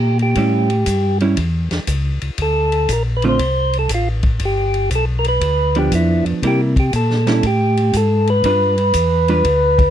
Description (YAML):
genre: soul jazz organ trio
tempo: 119 BPM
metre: 4/4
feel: swing 67% on 8ths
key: unclear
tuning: A4 = 440 Hz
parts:
  - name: percussive tonewheel organ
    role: melody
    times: 0.0-9.9 s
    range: E4 to C5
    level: -18 LUFS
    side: right 1 dB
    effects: slow rotary speaker
  - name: mellow tonewheel organ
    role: bass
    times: 0.0-9.9 s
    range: G1 to C3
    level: -18 LUFS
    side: equal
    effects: chorus vibrato, slow rotary speaker
  - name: vintage drum kit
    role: drums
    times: 0.2-9.9 s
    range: hi-hat, kick drum, ride cymbal, snare drum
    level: -24 LUFS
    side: left 1 dB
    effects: none
  - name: vintage hollow-body jazz guitar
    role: accompaniment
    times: 0.4-9.4 s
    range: D3 to B4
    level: -19 LUFS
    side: right 3 dB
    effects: none
room: little or no reverb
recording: dry, close 1970s-style studio recording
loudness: -14 LUFS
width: side -10 dB against mid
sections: 0.0-9.9 A section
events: none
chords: 0.4 A7; 2.4 D7(no3); 4.4 G7; 6.4 C7; 7.4 Abmmaj7; 8.4 G7